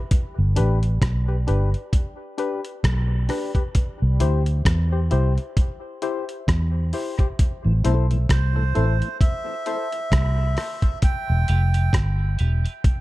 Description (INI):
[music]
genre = dub reggae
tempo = 66 BPM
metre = 4/4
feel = swing 57% on 16ths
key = A minor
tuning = A4 = 440 Hz
[part]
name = dusty soul sampler-style drum kit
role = drums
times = 0.1-13.0 s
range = hi-hat, kick drum, rim click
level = -21 LUFS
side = equal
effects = none
[part]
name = vintage muted fingered electric bass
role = bass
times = 0.4-12.6 s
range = E1 to E2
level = -19 LUFS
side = equal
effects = none
[part]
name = percussive organ stab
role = stabs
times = 0.6-12.6 s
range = D4 to C5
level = -30 LUFS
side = left 4 dB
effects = chorus, high-pass filter, dub echo
[part]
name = mellow tonewheel organ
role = accompaniment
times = 7.6-12.7 s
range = E2 to E4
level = -34 LUFS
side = left 2 dB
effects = slow rotary speaker, high-pass filter, dub echo
[part]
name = melodica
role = melody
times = 8.3-12.0 s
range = C5 to G5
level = -29 LUFS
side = right 3 dB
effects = dub echo
[part]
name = clean electric guitar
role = accompaniment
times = 11.5-12.7 s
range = E4 to B4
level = -40 LUFS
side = right 5 dB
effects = analog chorus, high-pass filter, dub echo
[sound]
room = light reverb, digital ambience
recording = dark, warm production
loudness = -19 LUFS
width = side -18 dB against mid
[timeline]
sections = 0.0-13.0 A section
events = break 0.0-11.0; filter sweep 7.4-13.0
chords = 0.1 G; 3.8 C; 7.4 Am; 11.0 Em